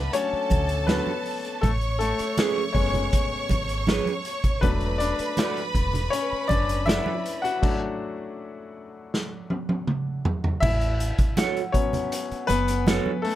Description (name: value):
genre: lush 1970s-style soul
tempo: 80 BPM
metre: 4/4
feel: straight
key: A major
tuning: A4 = 440 Hz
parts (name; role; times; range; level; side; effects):
- bright studio violin section; second line; 0.0-7.6 s; A4 to C#6; -30 LUFS; right 1 dB; none
- clear grand piano; accompaniment; 0.0-13.4 s; F#3 to F#5; -28 LUFS; left 4 dB; none
- deep dub fingered electric bass; bass; 0.0-13.0 s; E1 to D2; -27 LUFS; equal; none
- vibraphone with soft mallets; texture; 0.0-1.2, 11.4-13.4 s; E5 to A5; -38 LUFS; right 2 dB; none
- vintage drum kit; drums; 0.1-13.4 s; crash cymbal, hi-hat, kick drum, snare drum, toms; -26 LUFS; equal; none
- congas; percussion; 0.5-13.2 s; none; -30 LUFS; right 4 dB; none
- electric guitar through a small old amp; riff; 0.9-13.1 s; C#4 to D5; -28 LUFS; right 7 dB; lush chorus
room: light reverb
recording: none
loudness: -22 LUFS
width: side -13 dB against mid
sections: 0.0-10.6 A section; 10.6-13.4 B section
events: grand piano solo 0.0-10.6, 10.6-13.4; stop 7.6-10.6; drum fill 9.1-10.6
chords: 0.0 E9sus4; 1.6 Amaj9; 4.6 E9sus4; 10.6 A6